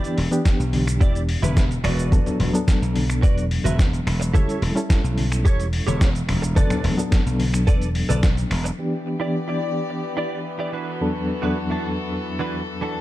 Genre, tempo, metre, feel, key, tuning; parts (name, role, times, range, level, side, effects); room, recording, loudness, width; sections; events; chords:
nu-disco, nu disco; 108 BPM; 4/4; straight; E dorian; A4 = 441 Hz
bright reed electric piano; accompaniment; 0.0-13.0 s; E2 to A4; -26 LUFS; left 1 dB; tremolo, low-pass filter, digital delay
direct-recorded clean electric guitar; riff; 0.0-13.0 s; E3 to E5; -30 LUFS; right 4 dB; ensemble chorus, low-pass filter, digital delay
dusty soul sampler-style drum kit; drums; 0.0-8.8 s; finger snaps, hi-hat, shaker, snare drum; -29 LUFS; equal; small room ambience
glassy slap bass; bass; 0.2-8.7 s; E1 to B1; -22 LUFS; equal; sidechain pumping
electronic kick drum; drums; 0.5-8.3 s; -17 LUFS; equal; small room ambience
congas; percussion; 0.7-8.2 s; -29 LUFS; left 3 dB
warm studio string section; sustained chords; 8.8-13.0 s; E3 to D5; -30 LUFS; left 4 dB; sidechain pumping
light reverb; dark, warm production; -19 LUFS; side -15 dB against mid
0.0-8.8 A section; 8.8-13.0 B section
filter sweep on reed electric piano 8.8-13.0
0.0 Em7; 1.8 D6/E; 4.3 A7/E; 6.6 Bm7/E; 8.8 Em7; 10.7 D6/E